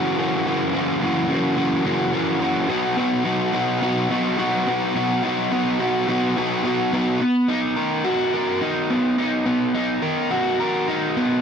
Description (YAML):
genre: rock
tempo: 106 BPM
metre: 4/4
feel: straight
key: B major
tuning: A4 = 441 Hz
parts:
  - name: overdriven semi-hollow guitar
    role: solo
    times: 0.0-11.4 s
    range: F#2 to A#4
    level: -19 LUFS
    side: equal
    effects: none
room: little or no reverb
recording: dry, close 1970s-style studio recording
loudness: -19 LUFS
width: side -7 dB against mid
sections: 0.0-7.2 A section; 7.2-11.4 B section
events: none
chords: 0.0 F#7; 2.7 B; 7.2 Bmaj7